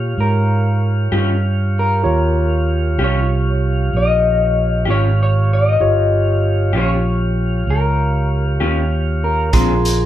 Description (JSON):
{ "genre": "slow blues", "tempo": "64 BPM (dotted quarters)", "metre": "12/8", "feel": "straight", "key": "Eb mixolydian", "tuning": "A4 = 440 Hz", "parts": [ { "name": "electric guitar through a small old amp", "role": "melody", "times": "0.0-10.1 s", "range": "Bb4 to Eb5", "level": "-20 LUFS", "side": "left 3 dB", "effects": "harmonic tremolo" }, { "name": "barky tine electric piano", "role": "accompaniment", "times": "0.0-10.1 s", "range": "F4 to C6", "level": "-24 LUFS", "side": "right 1 dB", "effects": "overdrive" }, { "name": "mellow tonewheel organ", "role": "sustained chords", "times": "0.0-10.1 s", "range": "D3 to F5", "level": "-27 LUFS", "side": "left 2 dB", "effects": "slow rotary speaker" }, { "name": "fingered electric bass", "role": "bass", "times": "0.0-10.1 s", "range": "G1 to Bb2", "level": "-16 LUFS", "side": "right 1 dB", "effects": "none" }, { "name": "electric guitar through a small old amp", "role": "accompaniment", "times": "1.1-9.7 s", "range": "Bb2 to G4", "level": "-22 LUFS", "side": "left 4 dB", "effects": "harmonic tremolo" }, { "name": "vintage drum kit", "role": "drums", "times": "9.5-10.0 s", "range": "hi-hat, kick drum", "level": "-17 LUFS", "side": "right 1 dB", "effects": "none" } ], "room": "moderate large studio reverb, RT60 0.9 s", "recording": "band playing live in one room", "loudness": "-14 LUFS", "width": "side -12 dB against mid", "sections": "0.0-10.1 A section", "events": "none", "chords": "0.0 Eb9; 9.5 Bb9" }